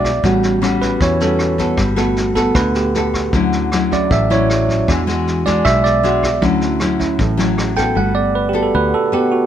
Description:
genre	bossa nova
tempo	155 BPM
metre	4/4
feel	straight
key	D major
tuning	A4 = 441 Hz
part	bell-like tine electric piano	accompaniment	0.0-9.5 s	F#3 to G5	-17 LUFS	right 4 dB	none
part	nylon-string guitar	accompaniment	0.0-9.5 s	A2 to A4	-18 LUFS	left 3 dB	none
part	fingered electric bass	bass	0.0-8.9 s	G1 to E2	-20 LUFS	equal	none
part	vintage brush drum kit	drums	0.0-7.8 s	kick drum, rim click, snare drum	-23 LUFS	equal	none
room	light reverb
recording	none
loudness	-13 LUFS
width	side -10 dB against mid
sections	0.0-8.0 A section; 8.0-9.5 A section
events	tine electric piano solo 0.0-9.5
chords	0.2 A13; 1.8 Gmaj9; 3.3 Dmaj9; 4.9 E9; 6.4 Dmaj9; 8.0 Gmaj9

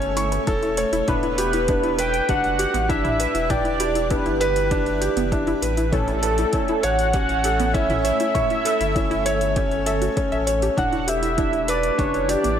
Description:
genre	piano and strings electronica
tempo	99 BPM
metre	4/4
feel	straight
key	E dorian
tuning	A4 = 440 Hz
part	granular cloud pad	sustained chords	0.0-12.6 s	A3 to E5	-30 LUFS	right 1 dB	built-in reverb, sidechain pumping
part	felt-muted upright piano	riff	0.0-12.6 s	C#4 to C#6	-24 LUFS	equal	ping-pong delay
part	warm sub bass	bass	0.0-12.6 s	E1 to A1	-27 LUFS	equal	sidechain pumping
part	deep house drum kit	drums	0.0-12.6 s	hi-hat, toms	-31 LUFS	right 1 dB	overdrive, studio reverb
part	warbly dusty pluck	arpeggios	0.2-12.5 s	B3 to E5	-30 LUFS	equal	chorus, sidechain pumping, ping-pong delay
part	electronic kick drum	drums	0.5-12.1 s	none	-26 LUFS	equal	overdrive, studio reverb
part	warm velvety synth lead	melody	1.1-12.6 s	A4 to G5	-23 LUFS	right 1 dB	chorus, tremolo
room	light reverb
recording	none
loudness	-19 LUFS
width	side -9 dB against mid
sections	0.0-12.6 A section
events	none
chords	0.0 A; 1.1 Em7; 5.9 A; 10.8 Em7

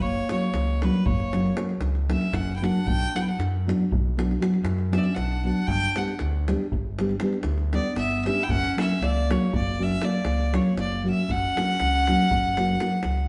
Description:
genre	balkan folk, Balkan wedding band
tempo	235 BPM (eighths)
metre	11/8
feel	straight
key	F# phrygian dominant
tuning	A4 = 441 Hz
part	bright fiddle	melody	0.0-13.3 s	B4 to G5	-30 LUFS	equal	none
part	mellow clarinet	second line	0.0-13.3 s	G3 to E4	-35 LUFS	equal	none
part	overdriven fingered electric bass	bass	0.0-13.3 s	F#1 to F#2	-30 LUFS	equal	none
part	davul	percussion	0.0-13.2 s	none	-34 LUFS	equal	none
part	nylon-string guitar	accompaniment	0.3-13.0 s	F#3 to G4	-28 LUFS	equal	none
room	wet stone room reverb, RT60 1.3 s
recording	band playing live in one room, nothing above 10.7 kHz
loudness	-24 LUFS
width	mono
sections	0.0-13.3 A section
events	none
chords	0.0 F#; 2.9 Bm; 5.7 G; 8.5 F#

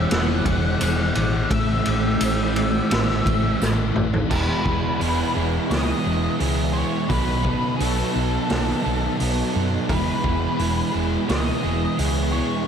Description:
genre	rock, shoegaze and dream pop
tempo	86 BPM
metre	4/4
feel	straight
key	E major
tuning	A4 = 440 Hz
part	octave-fuzz lead guitar	melody	0.0-12.7 s	A4 to F#5	-28 LUFS	left 2 dB	distortion, analog delay
part	overdriven semi-hollow guitar	riff	0.0-12.7 s	A2 to A4	-25 LUFS	right 10 dB	reverse reverb
part	thick fuzz guitar	riff	0.0-12.7 s	E2 to B3	-25 LUFS	left 7 dB	distortion, ensemble chorus
part	hollow-body short-scale fingered electric bass	bass	0.0-12.4 s	E1 to F#2	-25 LUFS	equal	none
part	raw garage drum kit	drums	0.1-12.1 s	crash cymbal, hi-hat, kick drum, ride cymbal, snare drum, toms	-27 LUFS	equal	none
part	tambourine	percussion	0.8-3.8 s	none	-38 LUFS	right 16 dB	none
room	moderate plate reverb, RT60 2.0 s, small room ambience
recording	dreamy mix soaked in reverb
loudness	-19 LUFS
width	side -7 dB against mid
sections	0.0-4.3 A section; 4.3-12.7 B section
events	drum fill 3.6-4.3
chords	0.0 Eadd9; 1.5 A; 4.3 E6; 7.1 B7; 9.9 E6

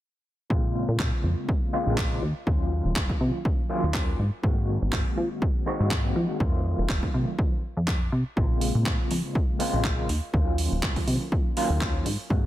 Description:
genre	filtered disco house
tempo	122 BPM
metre	4/4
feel	swing 55% on 16ths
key	Bb minor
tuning	A4 = 437 Hz
part	overdriven tine electric piano	accompaniment	0.5-12.5 s	Db3 to Gb4	-30 LUFS	equal	medium tremolo, phaser, sidechain pumping, low-pass filter
part	plucky analog bass	bass	0.5-12.5 s	Eb1 to F3	-26 LUFS	equal	sidechain pumping, low-pass filter
part	electronic kick drum	drums	0.5-12.4 s	none	-26 LUFS	equal	none
part	house drum kit	drums	1.0-12.2 s	handclaps, hi-hat	-33 LUFS	right 1 dB	sidechain pumping on hats
room	digital ambience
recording	none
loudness	-23 LUFS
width	side -14 dB against mid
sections	0.5-12.5 A section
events	filter sweep 0.5-12.5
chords	0.5 Bbm9; 2.2 Ebm7; 4.2 Ab7; 6.4 F7b9; 8.4 Bbm9; 10.1 Ebm7

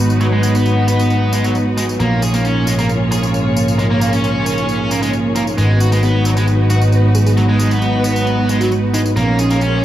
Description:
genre	breakbeat, breaks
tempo	134 BPM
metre	4/4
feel	straight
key	G# dorian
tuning	A4 = 440 Hz
part	phased analog pad	sustained chords	0.0-9.8 s	G#2 to C#4	-20 LUFS	right 2 dB	phaser, chorus, vintage 12-bit sampler grit
part	clear studio string section	stabs	0.0-9.8 s	G#3 to C#5	-20 LUFS	left 1 dB	vintage 12-bit sampler grit, dub echo
part	picked electric bass	bass	0.0-9.8 s	G#1 to A#1	-16 LUFS	equal	low-pass filter
part	tambourine	drums	0.1-9.7 s	none	-28 LUFS	equal	overdrive, studio reverb, dub echo
part	tight distorted guitar	riff	0.2-9.8 s	F#3 to G#4	-21 LUFS	equal	distortion, low-pass filter, dub echo
part	bell-like FM electric piano	melody	7.1-9.1 s	D#4 to G#4	-26 LUFS	right 1 dB	chorus, small speaker sound, dub echo
room	light reverb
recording	echo-heavy mix, small room ambience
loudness	-13 LUFS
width	side -12 dB against mid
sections	0.0-9.8 A section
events	none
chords	0.0 G#m7; 2.0 A#m7; 5.6 G#m7; 9.2 A#m7

